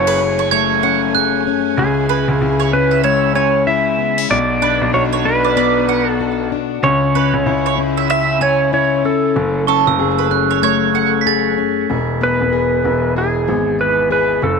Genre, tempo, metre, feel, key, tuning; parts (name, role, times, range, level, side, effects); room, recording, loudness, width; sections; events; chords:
acoustic pop; 95 BPM; 4/4; swing 60% on 16ths; A4 = 440 Hz
clean lap steel guitar; melody; 0.0-14.6 s; G#4 to E5; -17 LUFS; right 2 dB
fingerpicked plugged-in steel-string acoustic guitar; accompaniment; 0.0-14.6 s; E2 to G#4; -18 LUFS; left 13 dB
rich studio string section; sustained chords; 0.0-11.9 s; C#3 to G#5; -29 LUFS; right 1 dB
warm grand piano; bass; 0.0-14.6 s; E1 to C#2; -21 LUFS; right 1 dB
bowl-back mandolin; arpeggios; 0.1-11.1 s; A4 to G#5; -21 LUFS; right 14 dB; tape echo
glockenspiel with soft plastic mallets; second line; 0.5-1.6, 9.7-11.9 s; C#6 to B6; -20 LUFS; right 15 dB
moderate spring reverb, RT60 2.7 s; 1960s-style stereo with parts hard left and right; -13 LUFS; side -5 dB against mid
0.0-11.9 A section; 11.9-14.6 B section
0.0 F#madd9; 1.8 C#m; 4.3 Bm; 6.8 C#m; 9.4 F#madd9; 11.9 E